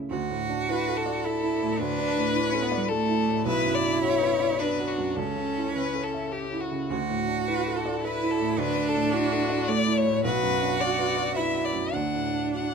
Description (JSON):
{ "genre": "neoclassical piano and strings", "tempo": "106 BPM", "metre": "3/4", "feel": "uneven beats, rubato", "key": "D major", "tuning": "A4 = 440 Hz", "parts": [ { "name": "felt-muted upright piano", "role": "accompaniment", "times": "0.0-12.7 s", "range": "B1 to E5", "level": "-29 LUFS", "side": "right 2 dB", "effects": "none" }, { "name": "bright cello", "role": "second line", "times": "0.1-12.7 s", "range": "G3 to F#4", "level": "-28 LUFS", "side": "right 5 dB", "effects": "none" }, { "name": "rich violin", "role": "melody", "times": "0.7-12.7 s", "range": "F#4 to F#5", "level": "-28 LUFS", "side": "left 7 dB", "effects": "none" } ], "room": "little or no reverb", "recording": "close, detailed microphones", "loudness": "-24 LUFS", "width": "side -6 dB against mid", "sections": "0.1-12.7 A section", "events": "none", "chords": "0.1 Dadd9; 3.5 Bm; 5.2 A/C#; 6.9 Dadd9; 10.2 Bm; 11.9 D" }